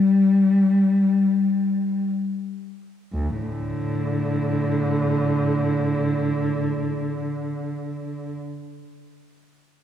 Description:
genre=classical, free, expressive piece for unaccompanied cello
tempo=free time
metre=none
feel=none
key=unclear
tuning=A4 = 440 Hz
part: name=dark cello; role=solo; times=0.0-8.3 s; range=D2 to G3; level=-20 LUFS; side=left 1 dB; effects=none
room=wet concert hall reverb, RT60 2.0 s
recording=heard from further back in the room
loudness=-20 LUFS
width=side -10 dB against mid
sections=0.0-3.1 A section; 3.1-9.8 B section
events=slowing down 0.0-3.1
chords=none

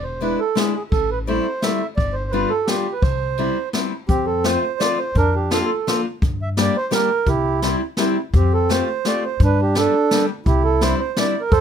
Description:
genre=musette waltz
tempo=170 BPM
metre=3/4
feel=straight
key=C major, F major from 4.1 s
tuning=A4 = 440 Hz
part: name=mellow accordion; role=melody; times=0.0-11.6 s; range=C4 to E5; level=-20 LUFS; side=right 4 dB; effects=none
part: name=upright bass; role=bass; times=0.0-11.6 s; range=E1 to G2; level=-22 LUFS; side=left 1 dB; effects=none
part: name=fingerpicked steel-string acoustic guitar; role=accompaniment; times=0.2-11.3 s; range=F3 to G4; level=-22 LUFS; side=left 5 dB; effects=none
part: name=jazz brush drum kit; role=drums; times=0.2-11.6 s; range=hi-hat, kick drum, ride cymbal, snare drum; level=-22 LUFS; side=equal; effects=none
room=light reverb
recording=close, detailed microphones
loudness=-17 LUFS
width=side -8 dB against mid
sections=0.0-4.1 A section; 4.1-11.6 B section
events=none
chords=0.0 E7; 0.9 Am7; 2.0 G7; 3.0 Cmaj7; 4.1 F; 5.2 Bb/F; 6.2 Gm; 7.3 C; 8.3 Fadd9; 9.4 G; 10.5 Cadd9

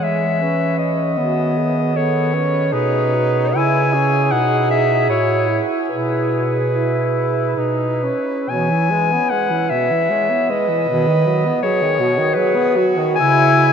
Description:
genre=classical, lyrical piece for single-reed quartet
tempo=61-83 BPM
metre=3/4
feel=rubato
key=E major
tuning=A4 = 440 Hz
part: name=bright clarinet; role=melody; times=0.0-13.7 s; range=B4 to G#5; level=-19 LUFS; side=left 3 dB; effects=none
part: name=clear alto saxophone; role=second line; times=0.0-13.7 s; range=E4 to C#5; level=-22 LUFS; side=right 5 dB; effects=none
part: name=warm tenor saxophone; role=accompaniment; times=0.0-13.7 s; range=B2 to E4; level=-22 LUFS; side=left 1 dB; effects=none
part: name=dark bass clarinet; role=bass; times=0.0-13.7 s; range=A2 to E3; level=-21 LUFS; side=right 2 dB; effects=none
room=wet huge ambient reverb, RT60 7.9 s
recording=in a vast, echoing space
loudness=-15 LUFS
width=side -7 dB against mid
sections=0.0-13.7 A section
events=none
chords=0.0 E; 1.2 B/D#; 3.5 C#m; 5.1 A; 5.9 E/B; 7.6 B; 8.5 E/B; 10.9 B; 13.2 C#m

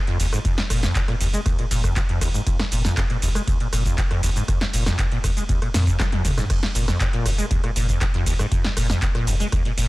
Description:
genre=acid house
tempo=119 BPM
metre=4/4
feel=straight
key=F minor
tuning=A4 = 440 Hz
part: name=acid bass, saw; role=riff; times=0.1-9.9 s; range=Eb2 to Ab3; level=-25 LUFS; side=equal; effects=ensemble chorus, sidechain pumping, digital delay
part: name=electro analog drum machine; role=drums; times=0.1-9.9 s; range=crash cymbal, handclaps, hi-hat, ride cymbal, rim click, shaker, snare drum, toms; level=-27 LUFS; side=equal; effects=none
part: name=warm sub bass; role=bass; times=0.2-9.9 s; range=F1 to F2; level=-23 LUFS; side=equal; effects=sidechain pumping
part: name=electronic kick drum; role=drums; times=0.4-9.6 s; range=none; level=-23 LUFS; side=equal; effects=none
room=digital ambience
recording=dense, heavily limited modern master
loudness=-19 LUFS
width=side -20 dB against mid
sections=0.0-9.9 A section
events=drum fill 6.0-6.5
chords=none

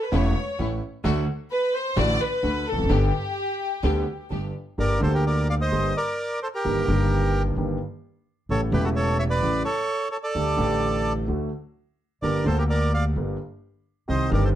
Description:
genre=tango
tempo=129 BPM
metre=4/4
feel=rubato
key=G major, G minor from 4.8 s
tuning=A4 = 443 Hz
part: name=warm studio violin section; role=second line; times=0.0-4.3 s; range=G4 to D5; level=-26 LUFS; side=left 1 dB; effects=none
part: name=warm grand piano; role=accompaniment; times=0.1-14.6 s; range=E1 to G4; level=-26 LUFS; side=right 1 dB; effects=none
part: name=rich chamber string section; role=stabs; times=0.1-4.5 s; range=A3 to G4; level=-33 LUFS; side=equal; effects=none
part: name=upright bass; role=bass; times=0.1-14.6 s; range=E1 to D2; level=-25 LUFS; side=equal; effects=none
part: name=bandoneon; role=melody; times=4.8-14.5 s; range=F#4 to F5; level=-25 LUFS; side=right 1 dB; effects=none
room=light reverb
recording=dark, warm production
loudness=-22 LUFS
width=side -11 dB against mid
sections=0.0-4.8 A section; 4.8-14.6 B section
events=violin section solo 0.0-4.8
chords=0.0 A; 1.1 D; 2.9 G; 4.8 Gm; 6.6 Eb/G; 8.5 A7; 10.3 Dsus4; 11.3 D; 12.2 Gm

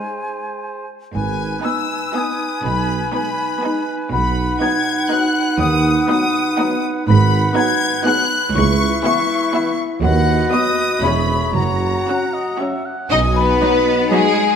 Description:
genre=cinematic, playful, whimsical film cue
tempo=121 BPM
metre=3/4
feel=straight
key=G# minor, B major from 7.1 s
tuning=A4 = 440 Hz
part: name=bright concert flute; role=second line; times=0.0-12.8 s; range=D#5 to G#5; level=-27 LUFS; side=left 1 dB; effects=none
part: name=mellow clarinet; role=second line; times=0.0-12.8 s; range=D#4 to G#4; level=-24 LUFS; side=equal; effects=none
part: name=mellow oboe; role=second line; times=0.0-13.1 s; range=B4 to F#5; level=-27 LUFS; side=right 2 dB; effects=none
part: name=mellow French horn section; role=sustained chords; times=0.0-14.6 s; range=E3 to D#4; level=-28 LUFS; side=left 3 dB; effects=none
part: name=large celesta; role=melody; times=1.1-14.6 s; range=F#5 to G#6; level=-23 LUFS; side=left 6 dB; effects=none
part: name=bright studio cello section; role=bass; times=1.1-14.6 s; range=C#2 to D#4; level=-22 LUFS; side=right 3 dB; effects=none
part: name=mellow tuba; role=bass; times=1.1-13.5 s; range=E1 to D#2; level=-24 LUFS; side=right 4 dB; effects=none
part: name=clear studio violin section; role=melody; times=1.2-14.6 s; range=F#5 to G#6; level=-25 LUFS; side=left 2 dB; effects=none
part: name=bright studio double bass section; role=bass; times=1.2-13.5 s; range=E1 to D#2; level=-22 LUFS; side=right 3 dB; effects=none
part: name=clear studio violin section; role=second line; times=1.6-14.6 s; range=F#4 to G#5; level=-22 LUFS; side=left 3 dB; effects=none
part: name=rich studio viola section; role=accompaniment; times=1.6-14.2 s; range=F#3 to F#4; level=-24 LUFS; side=right 2 dB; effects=none
room=moderate concert hall reverb, RT60 1.9 s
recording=none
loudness=-15 LUFS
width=side -7 dB against mid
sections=0.0-1.1 A section; 1.1-13.1 B section; 13.1-14.6 C section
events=none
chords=0.0 Ab; 1.1 G#m; 2.6 G#m/B; 4.1 B; 5.6 B/D#; 7.1 G#m7; 8.6 C#m7; 10.0 B/D#; 11.0 C#m7/E; 11.6 F#; 13.1 B

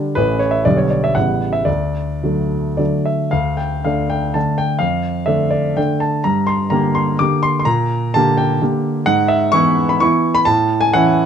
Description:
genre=classical, romantic triple-time dance for piano with dotted rhythms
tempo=103-136 BPM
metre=3/4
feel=rubato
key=D major, D minor from 3.3 s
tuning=A4 = 440 Hz
part: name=warm baby grand piano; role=solo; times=0.0-11.3 s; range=A1 to D6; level=-14 LUFS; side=equal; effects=none
room=moderate large studio reverb, RT60 1.1 s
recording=close, detailed microphones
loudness=-14 LUFS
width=side -8 dB against mid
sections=0.0-3.3 A section; 3.3-11.3 B section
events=none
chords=0.2 A; 0.7 G/B; 1.2 A9; 1.7 D; 3.3 D5; 4.8 Dm/F; 6.3 Gm; 7.7 Gm/Bb; 9.1 E/G#; 10.5 A

